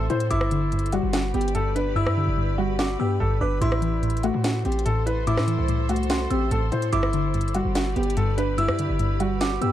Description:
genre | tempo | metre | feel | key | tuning
hip hop, trap | 145 BPM | 4/4 | half-time | unclear | A4 = 440 Hz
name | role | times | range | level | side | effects
felt-muted upright piano | melody | 0.0-9.7 s | E4 to C5 | -28 LUFS | equal | none
soft round pluck | accompaniment | 0.0-9.7 s | G2 to E4 | -26 LUFS | left 1 dB | chorus
granular cloud pad | sustained chords | 0.0-9.7 s | G4 to C6 | -34 LUFS | left 1 dB | built-in reverb
hard-hitting 808-style bass | bass | 0.0-9.7 s | G1 to A2 | -26 LUFS | equal | none
trap drum kit | drums | 0.1-9.7 s | hi-hat, rim click, snare drum | -30 LUFS | right 1 dB | none
delicate synth tine bell | second line | 0.3-9.7 s | C6 to E6 | -33 LUFS | equal | chorus, phaser, ping-pong delay
room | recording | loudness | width
little or no reverb | dark, warm production | -21 LUFS | side -12 dB against mid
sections
0.0-9.7 A section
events
hi-hats muted 2.0-3.6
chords
0.3 G; 3.6 Am; 6.9 G

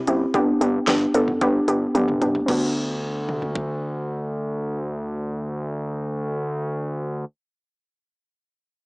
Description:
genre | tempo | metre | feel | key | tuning
synth-pop | 112 BPM | 4/4 | straight | D major | A4 = 442 Hz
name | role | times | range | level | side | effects
warbly dusty pluck | accompaniment | 0.1-7.3 s | B3 to A4 | -20 LUFS | equal | chorus
fat analog bass | bass | 0.1-7.2 s | F#1 to D2 | -27 LUFS | equal | none
pop drum kit | drums | 0.1-3.7 s | crash cymbal, hi-hat, kick drum, snare drum, toms | -28 LUFS | equal | none
room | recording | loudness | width
little or no reverb | dry, gritty hardware recording, small speaker sound | -21 LUFS | side -32 dB against mid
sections
0.0-2.5 A section; 2.5-6.8 B section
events
drum fill 1.9-2.5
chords
0.3 G; 2.5 D6

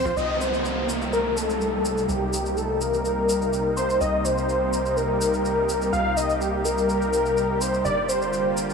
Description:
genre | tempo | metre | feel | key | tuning
progressive house | 125 BPM | 4/4 | straight | C dorian | A4 = 439 Hz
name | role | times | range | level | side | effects
wide unison lead | melody | 0.0-8.6 s | G4 to F5 | -23 LUFS | left 1 dB | dub echo
tight sequencer bass | bass | 0.0-8.7 s | G1 to C2 | -33 LUFS | equal | none
shaker | drums | 0.1-8.7 s | none | -35 LUFS | equal | overdrive
supersaw pad | sustained chords | 0.2-8.7 s | C3 to G4 | -27 LUFS | equal | none
downlifter | sound effects | 0.2-4.0 s | none | -30 LUFS | right 1 dB | none
room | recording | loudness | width
moderate huge ambient reverb, RT60 7.2 s | small room ambience | -21 LUFS | side -5 dB against mid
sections
0.2-8.7 A section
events
none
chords
0.2 Cm7; 7.8 Gm7

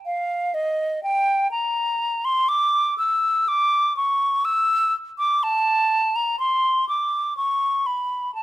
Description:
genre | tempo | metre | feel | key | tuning
classical, baroque-style fantasia for unaccompanied flute | 61 BPM | 4/4 | rubato | unclear | A4 = 441 Hz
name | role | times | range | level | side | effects
hollow concert flute | solo | 0.1-8.4 s | Eb5 to E6 | -19 LUFS | equal | none
room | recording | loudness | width
light reverb | close, detailed microphones | -19 LUFS | side -15 dB against mid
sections
0.0-8.4 A section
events
none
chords
none

